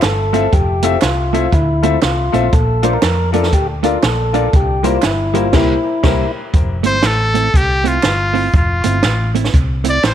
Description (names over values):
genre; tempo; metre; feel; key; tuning
ska; 120 BPM; 4/4; swing 61% on 8ths; F major; A4 = 440 Hz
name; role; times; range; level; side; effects
tonewheel organ; melody; 0.0-6.3 s; E4 to C5; -19 LUFS; left 1 dB; stopped rotary speaker
hollow-body short-scale fingered electric bass; bass; 0.0-10.1 s; F1 to F2; -18 LUFS; equal; none
compact cocktail drum kit; drums; 0.0-10.1 s; crash cymbal, hi-hat, kick drum, snare drum; -16 LUFS; right 1 dB; none
group handclap; percussion; 0.0-10.1 s; none; -30 LUFS; right 8 dB; tape echo
hollow-body jazz guitar; accompaniment; 0.3-10.0 s; G3 to F4; -22 LUFS; right 12 dB; none
warm upright piano; stabs; 0.3-6.3 s; E4 to E5; -20 LUFS; left 10 dB; tape echo
bright trumpet; melody; 6.9-10.1 s; F4 to D5; -16 LUFS; left 1 dB; none
room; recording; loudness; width
light reverb, small room ambience; 1960s-style stereo with parts hard left and right; -12 LUFS; side -10 dB against mid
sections
0.0-6.5 A section; 6.5-10.1 B section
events
band accent 5.5-6.5; trumpet solo 6.5-10.1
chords
0.0 Fmaj7; 2.5 Bbmaj7; 4.5 C7; 6.5 Fmaj7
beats
0.03 | 0.53 1.03 1.53 2.03 | 2.53 3.03 3.53 4.03 | 4.54 5.04 5.54 6.04 | 6.54 7.04 7.54 8.04 | 8.54 9.05 9.55 10.05